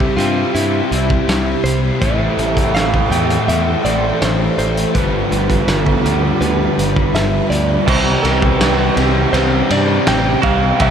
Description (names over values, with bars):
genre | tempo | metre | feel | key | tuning
rock, shoegaze and dream pop | 82 BPM | 4/4 | straight | unclear | A4 = 440 Hz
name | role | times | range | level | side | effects
direct-recorded clean electric guitar | melody | 0.0-10.9 s | E4 to G5 | -21 LUFS | equal | spring reverb, ping-pong delay
string machine, cellos | sustained chords | 0.0-10.9 s | F4 to B5 | -25 LUFS | equal | ensemble chorus
picked twelve-string acoustic guitar | arpeggios | 0.0-10.9 s | F3 to E4 | -26 LUFS | right 6 dB | ensemble chorus, ping-pong delay
overdriven semi-hollow guitar | riff | 0.0-10.9 s | G2 to C4 | -23 LUFS | equal | wide subtle chorus
thick fuzz guitar | riff | 0.0-10.9 s | G2 to C4 | -21 LUFS | left 6 dB | distortion, ensemble chorus
twangy electric guitar | riff | 0.0-10.9 s | G2 to G4 | -22 LUFS | right 8 dB | reverse reverb
modern bright picked electric bass | bass | 0.0-10.9 s | G1 to G2 | -20 LUFS | equal | none
loose indie drum kit | drums | 0.0-10.9 s | crash cymbal, hi-hat, kick drum, ride cymbal, snare drum | -20 LUFS | equal | none
room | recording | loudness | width
wet huge ambient reverb, RT60 7.7 s | dreamy mix soaked in reverb | -13 LUFS | side -8 dB against mid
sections
0.0-7.9 A section; 7.9-10.9 B section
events
none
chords
0.0 C; 2.0 Am7; 5.0 G7; 7.9 Cmaj7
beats
0.55 1.28 | 2.02 2.75 3.48 4.22 | 4.95 5.68 6.42 7.15 | 7.88 8.61 9.34 10.07 | 10.80